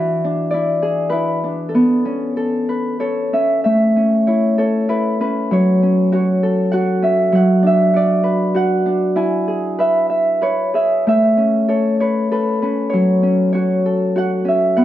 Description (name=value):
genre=children's music, lullaby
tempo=97 BPM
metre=3/4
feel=rubato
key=A major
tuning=A4 = 441 Hz
part: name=Celtic harp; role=solo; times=0.0-14.8 s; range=E3 to G#5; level=-14 LUFS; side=equal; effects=none
room=moderate recital hall reverb, RT60 1.5 s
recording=dark, warm production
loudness=-14 LUFS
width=side -12 dB against mid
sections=0.0-3.6 A section; 3.6-14.8 B section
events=none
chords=0.0 E7; 1.7 Aadd9; 3.6 A; 5.5 F#m; 7.3 Bm/F#; 9.2 E; 11.1 Aadd9; 12.9 F#m